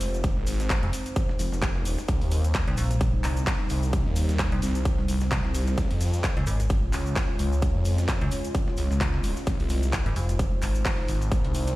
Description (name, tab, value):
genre	bass house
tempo	130 BPM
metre	4/4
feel	swing 56% on 16ths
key	unclear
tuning	A4 = 439 Hz
part	dark analog pad	sustained chords	0.0-11.8 s	G3 to Db5	-34 LUFS	equal	chorus, sidechain pumping
part	phased detuned saw bass	bass	0.0-11.8 s	F1 to F2	-26 LUFS	equal	phaser, tube saturation, sidechain pumping
part	big-room dance drum kit	drums	0.0-11.8 s	handclaps, hi-hat	-34 LUFS	equal	overdrive
part	breakbeat sampler-style drum kit	drums	0.0-11.8 s	hi-hat, snare drum	-43 LUFS	equal	none
part	cabasa	percussion	0.0-11.8 s	none	-43 LUFS	left 3 dB	none
part	electronic kick drum	drums	0.2-11.4 s	none	-27 LUFS	equal	overdrive
part	metallic FM bass	bass	0.8-10.6 s	F1 to Db2	-26 LUFS	equal	sidechain pumping
room	little or no reverb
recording	played on a big sound system in a bare room, stone room reverb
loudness	-23 LUFS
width	side -18 dB against mid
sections	0.0-11.8 A section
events	none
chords	0.0 Fm; 2.1 Cm; 5.8 Db; 9.5 Ab6